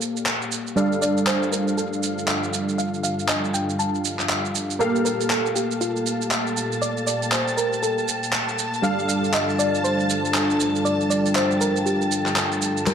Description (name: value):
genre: deep house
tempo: 119 BPM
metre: 4/4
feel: swing 60% on 16ths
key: unclear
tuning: A4 = 441 Hz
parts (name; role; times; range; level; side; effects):
- dark analog pad; sustained chords; 0.0-12.9 s; G3 to G5; -27 LUFS; left 1 dB; chorus
- warm analog keys; stabs; 0.0-12.8 s; G3 to F5; -26 LUFS; right 1 dB; chorus, low-pass filter, analog delay
- deep house drum kit; drums; 0.0-12.9 s; handclaps, hi-hat, shaker; -26 LUFS; right 1 dB; none
- soft round pluck; melody; 0.8-12.9 s; F4 to A5; -27 LUFS; equal; lush chorus, analog delay
- string machine, violins; texture; 4.8-12.9 s; A5; -30 LUFS; equal; ensemble chorus
- congas; percussion; 12.9 s; none; -22 LUFS; left 4 dB; none
room: wet spring reverb, RT60 1.8 s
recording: echo-heavy mix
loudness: -20 LUFS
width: side -8 dB against mid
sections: 0.0-12.9 A section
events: filter sweep on synth keys 0.0-12.9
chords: 0.0 Gm9; 0.8 Dm/G; 4.8 Gm9; 8.8 Dm/G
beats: 0.26 | 0.77 1.27 1.77 2.28 | 2.78 3.29 3.79 4.29 | 4.80 5.30 5.81 6.31 | 6.82 7.32 7.82 8.33 | 8.83 9.34 9.84 10.35 | 10.85 11.35 11.86 12.36 | 12.87